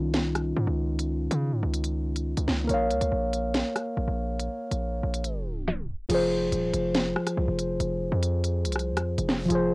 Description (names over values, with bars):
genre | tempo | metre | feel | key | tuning
hip hop, drill | 141 BPM | 4/4 | half-time | F minor | A4 = 440 Hz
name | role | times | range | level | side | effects
muted felt-like synth keys | accompaniment | 0.0-9.7 s | Eb3 to F5 | -28 LUFS | equal | chorus, cassette tape
hard-hitting 808-style bass | bass | 0.0-9.7 s | Eb1 to Db3 | -28 LUFS | equal | none
drill drum kit | drums | 0.1-9.6 s | crash cymbal, hi-hat, rim click, snare drum | -30 LUFS | equal | cassette tape
room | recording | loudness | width
little or no reverb | home recording on cassette, tape stop | -25 LUFS | side -24 dB against mid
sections
0.0-6.1 A section; 6.1-9.7 B section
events
tape stop 5.2-6.1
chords
0.0 Dbadd9; 2.7 Bbm; 6.1 Fm